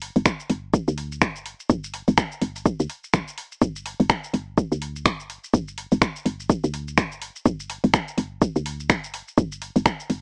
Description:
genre	minimal techno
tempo	125 BPM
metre	4/4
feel	swing 59% on 16ths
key	unclear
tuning	A4 = 437 Hz
part	woody FM bass	bass	0.0-10.2 s	D1 to D2	-23 LUFS	equal	sidechain pumping
part	house drum kit	drums	0.0-10.2 s	finger snaps, hi-hat, shaker	-24 LUFS	equal	none
part	electronic kick drum	drums	0.3-10.0 s	none	-20 LUFS	equal	none
room	light reverb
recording	small speaker sound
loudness	-21 LUFS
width	side -39 dB against mid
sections	0.0-10.2 A section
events	none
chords	none

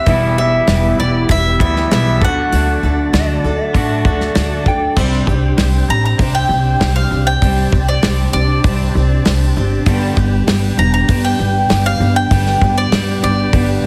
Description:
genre	folk rock and heartland rock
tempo	98 BPM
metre	4/4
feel	straight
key	unclear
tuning	A4 = 438 Hz
part	bowl-back mandolin	melody	0.0-13.9 s	D5 to Bb5	-21 LUFS	equal	none
part	picked twelve-string acoustic guitar	accompaniment	0.0-13.9 s	G2 to A4	-22 LUFS	equal	none
part	tonewheel organ	sustained chords	0.0-13.9 s	F#3 to B5	-30 LUFS	equal	slow rotary speaker
part	twangy electric guitar	riff	0.1-13.9 s	E2 to F#4	-27 LUFS	equal	spring reverb
part	upright bass	bass	0.1-13.8 s	E1 to A2	-18 LUFS	equal	none
part	natural country drum kit	drums	0.1-13.7 s	crash cymbal, hi-hat, kick drum, snare drum	-20 LUFS	equal	none
part	electric slide guitar	second line	3.1-5.0 s	D5 to G5	-25 LUFS	equal	none
room	light reverb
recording	heavily compressed radio sound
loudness	-14 LUFS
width	mono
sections	0.0-5.0 A section; 5.0-13.9 B section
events	mandolin solo 5.0-13.9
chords	0.1 Em; 2.2 D; 5.0 Csus2; 9.9 G

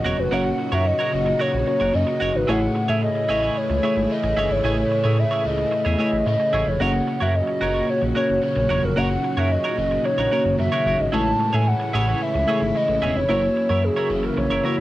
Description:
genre	pop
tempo	111 BPM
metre	4/4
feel	straight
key	F# mixolydian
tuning	A4 = 441 Hz
part	hollow clarinet-like synth lead	melody	0.0-14.8 s	G#4 to A5	-23 LUFS	equal	chorus, cassette tape
part	mellow FM electric piano	accompaniment	0.0-14.8 s	A2 to C#5	-26 LUFS	left 1 dB	chorus, cassette tape
part	overdriven electric guitar	accompaniment	0.0-14.8 s	F#2 to A3	-35 LUFS	left 1 dB	wide subtle chorus, cassette tape
part	soft string machine	sustained chords	0.0-14.8 s	A#2 to G#4	-28 LUFS	equal	ensemble chorus, cassette tape
part	twelve-string electric guitar	riff	0.0-14.8 s	E4 to C#5	-28 LUFS	right 3 dB	lush chorus, cassette tape
part	chorused synth bass	bass	0.0-14.8 s	E1 to A2	-24 LUFS	equal	transformer saturation
room	moderate small room reverb, RT60 0.5 s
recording	home recording on cassette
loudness	-18 LUFS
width	side -15 dB against mid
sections	0.0-14.8 A section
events	none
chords	0.0 F#; 2.5 Amaj7; 6.8 F#; 11.1 Amaj7; 13.3 F#7

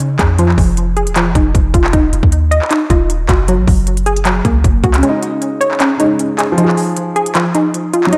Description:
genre	hip hop, trap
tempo	155 BPM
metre	4/4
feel	half-time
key	unclear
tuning	A4 = 440 Hz
part	hollow square pluck	arpeggios	0.0-8.2 s	F3 to Eb5	-17 LUFS	equal	chorus, low-pass filter, delay
part	clean 808-style bass	bass	0.0-5.0 s	Eb1 to Db3	-17 LUFS	equal	none
part	trap drum kit	drums	0.0-8.2 s	handclaps, hi-hat, kick drum	-18 LUFS	equal	none
part	dark baby grand piano	accompaniment	5.0-8.2 s	Db3 to Ab4	-20 LUFS	equal	low-pass filter
room	moderate lush hall reverb, RT60 1.6 s, digital ambience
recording	dreamy mix soaked in reverb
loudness	-13 LUFS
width	mono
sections	0.0-8.2 A section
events	kick muted 5.0-8.2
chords	0.4 Fm7; 1.9 Ebmadd9; 3.5 Gbadd9; 5.0 Dbsus2; 6.6 Fm7

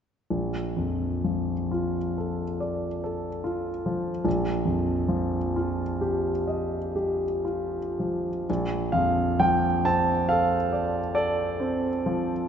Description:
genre	classical, impressionist solo piano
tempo	37-50 BPM (dotted quarters)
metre	9/8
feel	rubato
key	Bb major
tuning	A4 = 440 Hz
part	clear concert grand piano	solo	0.3-12.5 s	Bb1 to A5	-24 LUFS	equal	none
room	moderate concert hall reverb, RT60 2.3 s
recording	nothing above 7.7 kHz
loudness	-24 LUFS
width	side -8 dB against mid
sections	0.3-8.5 A section; 8.5-12.5 B section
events	none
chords	0.3 Bbmaj7; 4.3 F9sus4/Bb; 8.5 Bbmaj9

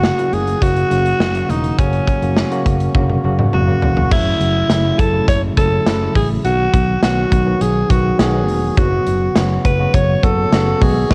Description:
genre	1980s-style pop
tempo	103 BPM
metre	4/4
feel	straight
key	unclear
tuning	A4 = 440 Hz
part	raspy alto saxophone	melody	0.0-11.1 s	C#4 to C#5	-21 LUFS	equal	cassette tape
part	bell-like tine electric piano	accompaniment	0.0-11.1 s	C#3 to F#4	-23 LUFS	equal	cassette tape
part	fretless electric bass	bass	0.0-11.1 s	E1 to B1	-21 LUFS	equal	none
part	big rock drum kit	drums	0.0-11.1 s	crash cymbal, hi-hat, kick drum, snare drum, toms	-20 LUFS	equal	cassette tape
room	light reverb, small room ambience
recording	home recording on cassette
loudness	-16 LUFS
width	mono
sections	0.0-4.1 A section; 4.1-11.1 B section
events	drum fill 3.0-4.1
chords	0.0 F#; 4.1 F#m7; 6.4 B; 8.8 F#sus4

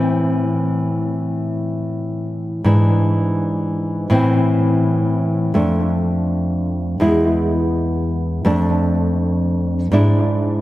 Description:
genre	classical, baroque-style dance for nylon-string guitar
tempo	82 BPM (dotted quarters)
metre	12/8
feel	rubato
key	unclear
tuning	A4 = 440 Hz
part	nylon-string guitar	solo	0.0-10.6 s	E2 to E4	-16 LUFS	equal	analog delay
room	light reverb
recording	echo-heavy mix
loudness	-16 LUFS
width	side -16 dB against mid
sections	0.0-10.6 A section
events	none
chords	0.0 Am; 2.7 E7/G#; 4.1 Am; 5.6 Dm/F; 7.0 E; 8.5 Dm/F; 10.0 E7/G#

